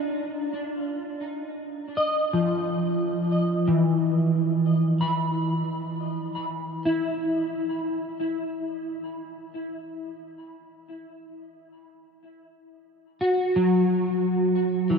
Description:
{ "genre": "ambient", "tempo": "free time", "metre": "none", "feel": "none", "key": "unclear", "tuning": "A4 = 435 Hz", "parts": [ { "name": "electric guitar at the edge of break-up", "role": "solo", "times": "0.0-15.0 s", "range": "E3 to B5", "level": "-23 LUFS", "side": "equal", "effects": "ensemble chorus, tape echo" } ], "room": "wet huge ambient reverb, RT60 7.1 s", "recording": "nothing above 10.7 kHz", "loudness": "-23 LUFS", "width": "side -5 dB against mid", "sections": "0.0-3.6 A section; 3.6-15.0 B section", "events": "none", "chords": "0.0 Dm; 3.6 E5; 10.8 N.C.", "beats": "free time" }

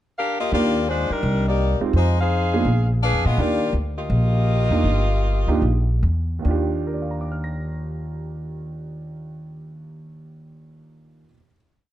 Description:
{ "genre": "jazz", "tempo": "142-169 BPM", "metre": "4/4", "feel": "swing 64% on 8ths", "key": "Eb major", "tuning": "A4 = 440 Hz", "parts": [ { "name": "clear saxophone section", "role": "melody", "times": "0.2-6.0 s", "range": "G3 to F5", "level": "-23 LUFS", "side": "left 2 dB", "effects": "none" }, { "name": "clear concert grand piano", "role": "accompaniment", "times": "0.5-11.6 s", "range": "Eb2 to Bb6", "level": "-27 LUFS", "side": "right 4 dB", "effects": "none" }, { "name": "upright bass", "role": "bass", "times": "0.5-11.2 s", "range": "G1 to Bb2", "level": "-21 LUFS", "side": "equal", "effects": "none" } ], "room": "light reverb", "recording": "dark, warm production", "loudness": "-19 LUFS", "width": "side -13 dB against mid", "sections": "0.0-0.5 pickup bar; 0.5-6.4 A section; 6.4-9.8 final chord", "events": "slowing down 3.4-6.4", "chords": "0.0 Bb6; 0.5 Ebmaj9; 1.2 Cm11; 1.9 Fm7; 2.7 Bb7b9; 3.4 Ebmaj9", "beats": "0.16 | 0.52 0.87 1.23 1.59 | 1.94 2.30 2.66 3.02 | 3.38 3.74 4.10 4.47 | 4.84 5.23 5.62 6.02 | 6.44 6.86 7.29 7.71 | 8.13 8.55 8.98 9.40" }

